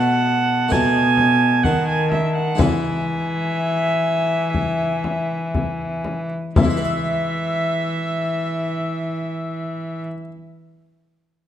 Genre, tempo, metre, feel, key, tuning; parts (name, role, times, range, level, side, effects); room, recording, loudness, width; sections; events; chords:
classical, renaissance-style consort dance; 58-66 BPM; 4/4; straight; E major; A4 = 440 Hz
alto recorder; melody; 0.0-10.0 s; G#5 to E6; -29 LUFS; left 3 dB
warm viola; second line; 0.0-10.0 s; E5 to G#5; -23 LUFS; right 3 dB
harpsichord; accompaniment; 0.0-10.3 s; B2 to E5; -29 LUFS; left 1 dB
rich cello; bass; 0.0-10.0 s; B2 to E3; -22 LUFS; equal
frame drum; percussion; 0.7-7.0 s; -21 LUFS; left 2 dB
wet recital hall reverb, RT60 1.4 s; dark, warm production; -18 LUFS; side -10 dB against mid
0.0-6.6 A section; 6.6-10.6 B section
slowing down 0.0-6.6
0.0 B7(no3); 0.7 B7; 2.6 E